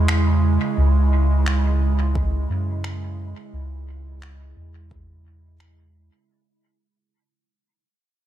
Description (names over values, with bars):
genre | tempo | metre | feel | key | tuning
ambient dub | 87 BPM | 4/4 | swing 55% on 16ths | C# minor | A4 = 439 Hz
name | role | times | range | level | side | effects
airy breathy pad | sustained chords | 0.0-6.3 s | C#3 to E4 | -26 LUFS | right 5 dB | chorus
soft dub sub bass | bass | 0.0-6.1 s | C#2 to F#2 | -20 LUFS | equal | none
electronic finger snaps | drums | 0.1-5.8 s | none | -30 LUFS | equal | studio reverb, dub echo
electronic kick drum | drums | 2.2-5.1 s | none | -26 LUFS | equal | studio reverb
room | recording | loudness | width
little or no reverb | none | -18 LUFS | side -11 dB against mid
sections
0.0-6.3 A section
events
fade-out 0.0-6.3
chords
0.0 C#m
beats
0.08 | 0.77 1.46 2.15 2.84 | 3.53 4.22 4.91 5.60